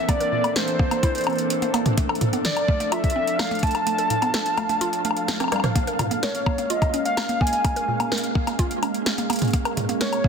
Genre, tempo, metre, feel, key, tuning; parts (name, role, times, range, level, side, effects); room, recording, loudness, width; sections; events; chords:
IDM; 127 BPM; 4/4; straight; A4 = 441 Hz
warbly nostalgic lead; melody; 0.0-10.3 s; C5 to A5; -26 LUFS; equal; chorus, tremolo, tape echo, shimmer reverb
warbly tape-like pad; sustained chords; 0.0-10.3 s; E3 to A4; -28 LUFS; equal; chorus, built-in reverb, shimmer reverb
flickering grainy texture; texture; 0.1-10.3 s; Bb3 to F5; -35 LUFS; left 1 dB; built-in reverb, shimmer reverb
mallet-like synth pluck; arpeggios; 0.1-10.3 s; A2 to Bb4; -29 LUFS; right 3 dB; chorus, digital delay, shimmer reverb
electro analog drum machine; drums; 0.1-10.2 s; hi-hat, rim click, snare drum, toms, woodblock; -26 LUFS; left 1 dB
electronic kick drum; drums; 0.1-10.3 s; -22 LUFS; equal
moderate echo chamber reverb, RT60 2.3 s; dense, heavily limited modern master; -20 LUFS; side -6 dB against mid
0.0-10.3 A section
kick drops out 3.9-5.8; drum fill 5.4-5.8
0.0 C13; 2.0 F6; 5.8 Bbm7